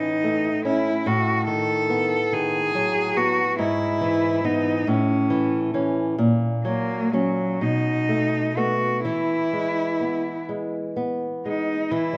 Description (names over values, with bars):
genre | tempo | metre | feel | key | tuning
romantic duo for cello and classical guitar | 40-49 BPM (dotted quarters) | 6/8 | rubato | E major | A4 = 439 Hz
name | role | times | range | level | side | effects
rich cello | melody | 0.0-12.2 s | F#3 to A4 | -25 LUFS | equal | none
nylon-string guitar | accompaniment | 0.0-12.2 s | G#2 to C#4 | -26 LUFS | equal | none
room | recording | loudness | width
wet recital hall reverb, RT60 1.9 s | none | -23 LUFS | mono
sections
0.0-11.9 A section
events
none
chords
0.0 A; 1.1 B7/A; 3.6 E/G#; 4.9 A; 6.2 F#/A#; 7.6 B7; 9.1 E